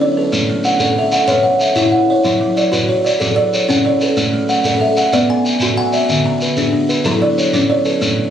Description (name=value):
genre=southern african traditional, mbira-style interlocking cycle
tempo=125 BPM (dotted quarters)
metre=12/8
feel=straight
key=unclear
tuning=A4 = 438 Hz
part: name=buzzing kalimba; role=arpeggios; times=0.0-8.3 s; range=C#3 to G#5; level=-18 LUFS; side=equal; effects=none
part: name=kalimba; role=arpeggios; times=0.0-8.3 s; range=D3 to G#5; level=-15 LUFS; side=equal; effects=none
part: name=shekere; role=percussion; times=0.3-8.2 s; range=none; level=-20 LUFS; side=equal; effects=none
room=moderate small room reverb, RT60 0.5 s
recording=recorded on a phone in the room, club reverb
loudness=-12 LUFS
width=side -9 dB against mid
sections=0.0-8.0 A section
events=none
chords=0.3 A; 2.3 F#m; 4.2 A; 5.1 Bm; 6.1 D; 7.1 F#m